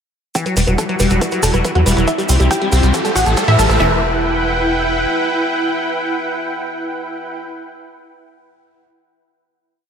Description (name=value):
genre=uplifting trance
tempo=139 BPM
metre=4/4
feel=straight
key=E minor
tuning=A4 = 440 Hz
part: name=liquid acid bass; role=arpeggios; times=0.3-4.0 s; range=E3 to C4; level=-22 LUFS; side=left 2 dB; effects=lush chorus, cassette tape, sidechain pumping, analog delay
part: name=electronic hi-hat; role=drums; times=0.3-3.8 s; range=none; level=-27 LUFS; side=right 2 dB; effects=none
part: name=wide unison pluck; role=melody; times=0.4-7.4 s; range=E4 to A5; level=-20 LUFS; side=equal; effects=cassette tape, sidechain pumping, analog delay
part: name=supersaw pad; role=sustained chords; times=0.6-7.4 s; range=G3 to G5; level=-19 LUFS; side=right 1 dB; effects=vintage 12-bit sampler grit, sidechain pumping
part: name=house drum kit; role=drums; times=0.4-3.9 s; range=kick drum, snare drum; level=-24 LUFS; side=equal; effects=high-pass filter on kick, high-pass filter on snare
part: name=maracas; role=percussion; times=0.4-3.8 s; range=none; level=-25 LUFS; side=right 2 dB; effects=none
part: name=riser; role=sound effects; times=1.7-3.8 s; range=none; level=-24 LUFS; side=right 1 dB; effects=none
part: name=tight sequencer bass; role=bass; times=0.6-5.1 s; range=E1 to A2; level=-16 LUFS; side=equal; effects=sidechain pumping
room=moderate church reverb, RT60 3.0 s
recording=dreamy mix soaked in reverb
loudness=-14 LUFS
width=side -7 dB against mid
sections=0.4-3.8 build; 3.8-7.3 final chord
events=build-up 0.4-3.8; filter sweep on synth pluck 0.4-3.8; riser 1.7-3.8; drum fill 2.1-3.8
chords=0.4 Emadd9; 2.1 C; 2.9 Am7; 3.8 Emadd9